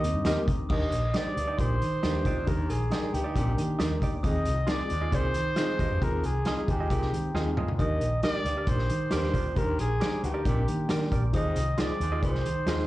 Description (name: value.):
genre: uptempo 1960s-style soul.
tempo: 135 BPM.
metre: 4/4.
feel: straight.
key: Eb major.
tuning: A4 = 440 Hz.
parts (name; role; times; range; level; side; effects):
mellow trumpet; melody; 0.0-12.9 s; G4 to Eb5; -32 LUFS; equal; tube saturation, slapback echo.
glockenspiel with soft plastic mallets; second line; 0.0-12.9 s; G5 to Eb6; -42 LUFS; equal; slapback echo, tape echo.
reed electric piano; accompaniment; 0.0-12.9 s; Eb3 to Eb5; -35 LUFS; left 2 dB; fast tremolo, slapback echo.
mellow electric guitar; riff; 0.0-4.2, 7.1-11.3 s; Ab3 to G4; -38 LUFS; left 5 dB; vibrato effect, slapback echo.
vintage muted fingered electric bass; bass; 0.0-12.9 s; Bb1 to Eb3; -29 LUFS; equal; none.
vintage drum kit; drums; 0.0-12.8 s; crash cymbal, hi-hat, kick drum, snare drum, toms; -31 LUFS; equal; vintage 12-bit sampler grit.
semi-hollow electric guitar; stabs; 0.3-12.8 s; Eb4 to Eb5; -36 LUFS; right 5 dB; spring reverb, slapback echo.
raspy baritone saxophone; riff; 0.7-12.8 s; Eb2 to Bb2; -39 LUFS; right 1 dB; slapback echo.
room: light reverb.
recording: live gig heard through the venue's PA, cassette tape, club reverb.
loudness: -25 LUFS.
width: side -16 dB against mid.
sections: 0.7-12.9 A section.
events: drum fill 7.3-7.8.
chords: 0.0 Eb; 0.7 Ebmaj7; 4.2 Fm7; 7.8 Ebmaj7; 11.3 Fm7.